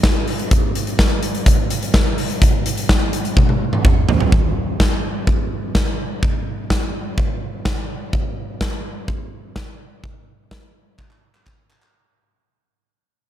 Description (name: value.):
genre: pop.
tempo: 126 BPM.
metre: 4/4.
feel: straight.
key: none.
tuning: none.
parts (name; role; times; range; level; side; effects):
huge arena drum kit; drums; 0.0-11.9 s; handclaps, hi-hat, kick drum, snare drum, toms; -16 LUFS; equal; none.
room: little or no reverb.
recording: none.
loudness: -16 LUFS.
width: side -11 dB against mid.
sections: 0.0-4.3 A section; 4.3-11.9 B section.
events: drum fill 3.4-4.3, 11.0-11.9; fade-out 4.3-11.9.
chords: none.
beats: 0.04 | 0.51 0.99 1.47 1.94 | 2.42 2.89 3.37 3.85 | 4.32 4.80 5.27 5.75 | 6.23 6.70 7.18 7.66 | 8.13 8.61 9.08 9.56 | 10.04 10.51 10.99 11.46.